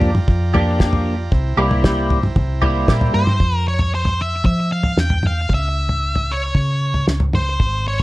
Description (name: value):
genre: psychedelic rock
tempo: 115 BPM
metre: 4/4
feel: straight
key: unclear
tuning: A4 = 440 Hz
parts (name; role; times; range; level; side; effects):
- combo organ; sustained chords; 0.0-3.4 s; E4 to Bb5; -30 LUFS; right 5 dB; none
- clean electric guitar; riff; 0.0-3.2 s; F3 to G4; -18 LUFS; equal; rotary speaker
- hollow-body short-scale fingered electric bass; bass; 0.0-8.0 s; Ab1 to F3; -20 LUFS; equal; none
- cloth-damped thuddy drum kit; drums; 0.0-8.0 s; kick drum, snare drum, toms; -18 LUFS; equal; none
- octave-fuzz lead guitar; melody; 3.1-8.0 s; C5 to G5; -22 LUFS; equal; distortion, slapback echo
room: little or no reverb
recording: dry, close 1970s-style studio recording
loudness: -15 LUFS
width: side -18 dB against mid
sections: 0.0-3.4 A section; 3.4-8.0 B section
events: none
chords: 0.0 Gm7/F; 1.3 C7; 3.4 Cadd11; 5.5 Dbm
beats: 0.28 0.80 | 1.31 1.84 2.36 2.88 | 3.40 3.92 4.45 4.97 | 5.50 6.02 6.55 7.08 | 7.60